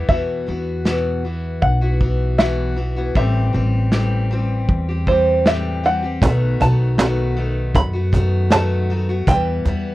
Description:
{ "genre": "acoustic folk duo or small band", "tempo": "78 BPM", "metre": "4/4", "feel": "straight", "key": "E harmonic minor", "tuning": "A4 = 440 Hz", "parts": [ { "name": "open-back banjo", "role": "melody", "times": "0.0-9.9 s", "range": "C5 to B5", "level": "-19 LUFS", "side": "right 1 dB", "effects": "none" }, { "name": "picked steel-string acoustic guitar", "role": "accompaniment", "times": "0.0-9.9 s", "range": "E2 to G4", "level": "-24 LUFS", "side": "left 3 dB", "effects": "none" }, { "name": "upright bass", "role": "bass", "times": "0.0-9.9 s", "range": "A1 to F#2", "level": "-20 LUFS", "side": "equal", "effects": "none" }, { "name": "natural country drum kit", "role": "drums", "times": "0.1-9.4 s", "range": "kick drum, snare drum", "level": "-20 LUFS", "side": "equal", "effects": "none" }, { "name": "cajon", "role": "percussion", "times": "6.2-9.8 s", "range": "none", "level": "-19 LUFS", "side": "right 2 dB", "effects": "none" } ], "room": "little or no reverb", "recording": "worn, warbling old tape, cassette tape, warbly pitch drift", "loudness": "-16 LUFS", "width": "side -17 dB against mid", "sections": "0.1-9.9 A section", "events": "none", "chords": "0.1 Esus2; 3.2 Am7; 6.2 B7; 9.3 Em", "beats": "| 0.09 0.86 1.62 2.39 | 3.16 3.92 4.69 5.46 | 6.22 6.98 7.75 8.51 | 9.27" }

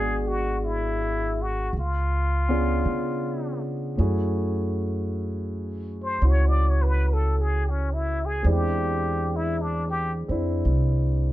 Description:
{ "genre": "jazz ballad", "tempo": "54 BPM", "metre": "4/4", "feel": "swing 67% on 8ths", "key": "F# minor", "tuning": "A4 = 440 Hz", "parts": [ { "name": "trumpet with plunger mute", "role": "melody", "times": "0.0-10.1 s", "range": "C#4 to D5", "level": "-28 LUFS", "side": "left 2 dB", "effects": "none" }, { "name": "warm grand piano", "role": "accompaniment", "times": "0.0-11.3 s", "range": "G#3 to G#4", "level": "-29 LUFS", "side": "equal", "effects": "none" }, { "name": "upright bass", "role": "bass", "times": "0.0-11.3 s", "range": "G#1 to C#3", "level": "-24 LUFS", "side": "equal", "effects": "none" } ], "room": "little or no reverb", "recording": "dark, warm production", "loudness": "-22 LUFS", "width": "side -15 dB against mid", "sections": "0.0-4.0 A section; 4.0-11.3 B section", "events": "muted trumpet solo 4.0-11.3", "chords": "0.0 G#m7b5; 1.7 C#7b9; 4.0 F#m9; 8.4 E7alt", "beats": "0.60 1.72 2.85 | 3.98 5.10 6.21 7.33 | 8.44 9.55 10.66" }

